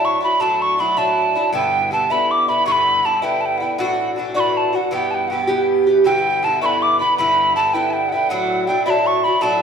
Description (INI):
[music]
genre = celtic folk, Celtic jig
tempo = 106 BPM (dotted quarters)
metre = 6/8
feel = straight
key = E dorian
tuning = A4 = 438 Hz
[part]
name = mellow hollow mid whistle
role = melody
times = 0.0-9.6 s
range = F#5 to D6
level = -17 LUFS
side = right 1 dB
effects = none
[part]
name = Irish bouzouki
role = accompaniment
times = 0.0-9.6 s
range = G2 to G4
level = -20 LUFS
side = equal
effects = none
[sound]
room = wet recital hall reverb, RT60 1.5 s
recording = none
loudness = -15 LUFS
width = side -6 dB against mid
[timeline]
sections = 0.0-6.1 A section; 6.1-9.6 A section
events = none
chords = 0.0 Dadd9; 1.5 Em7; 3.8 Dadd9; 4.9 Em; 6.1 Em7; 8.3 Dadd9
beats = | 0.41 0.97 | 1.54 2.10 | 2.67 3.23 | 3.80 4.36 | 4.93 5.49 | 6.06 6.62 | 7.18 7.74 | 8.30 8.87 | 9.43